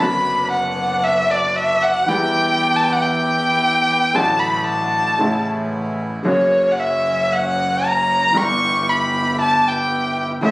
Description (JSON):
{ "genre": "tango", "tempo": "115 BPM", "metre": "4/4", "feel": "rubato", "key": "unclear", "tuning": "A4 = 439 Hz", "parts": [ { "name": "warm violin", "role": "second line", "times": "0.0-10.5 s", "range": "C#5 to C#6", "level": "-16 LUFS", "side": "equal", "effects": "none" }, { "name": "clear upright piano", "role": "accompaniment", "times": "0.0-10.5 s", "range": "G1 to A4", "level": "-25 LUFS", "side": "equal", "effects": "none" }, { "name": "bandoneon", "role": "stabs", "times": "0.0-10.5 s", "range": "A3 to A4", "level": "-26 LUFS", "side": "right 1 dB", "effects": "none" }, { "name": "rich double bass", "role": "bass", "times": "0.0-10.5 s", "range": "F#1 to E2", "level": "-26 LUFS", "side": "right 1 dB", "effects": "none" } ], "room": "light reverb", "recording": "recorded on a phone in the room, studio reverb, compression", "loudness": "-15 LUFS", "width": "side -20 dB against mid", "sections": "0.0-10.5 A section", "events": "violin solo 0.0-10.5", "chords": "0.0 Bm/F#; 2.1 Em; 4.2 D/A; 5.2 A; 6.3 F#; 8.3 Em/G" }